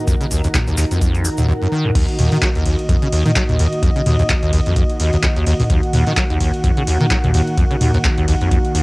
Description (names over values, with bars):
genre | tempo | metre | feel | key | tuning
acid house | 128 BPM | 4/4 | swing 56% on 16ths | Eb minor | A4 = 440 Hz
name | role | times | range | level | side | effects
warm analog pad | sustained chords | 0.0-8.8 s | Eb3 to Gb5 | -22 LUFS | equal | chorus, sidechain pumping, cassette tape
granular cloud pad | texture | 0.0-1.5 s | Eb4 to Bb5 | -28 LUFS | equal | built-in reverb, sidechain pumping, cassette tape
acid bass, saw | riff | 0.1-8.8 s | Db2 to Gb3 | -18 LUFS | equal | ensemble chorus, cassette tape
booming analog drum machine | drums | 0.1-8.8 s | crash cymbal, handclaps, hi-hat, ride cymbal, toms | -21 LUFS | equal | overdrive, cassette tape
electronic kick drum | drums | 0.1-8.6 s | none | -18 LUFS | equal | overdrive, cassette tape
tube shaker | percussion | 0.1-1.5 s | none | -29 LUFS | left 2 dB | none
room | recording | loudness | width
light reverb | home recording on cassette | -14 LUFS | side -24 dB against mid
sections
0.0-2.0 A section; 2.0-8.8 B section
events
drum fill 1.7; drop 2.0-8.8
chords
0.0 Ebm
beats
| 0.08 0.55 1.01 1.48 | 1.95 2.42 2.89 3.36 | 3.83 4.29 4.76 5.23 | 5.70 6.17 6.64 7.11 | 7.58 8.04 8.51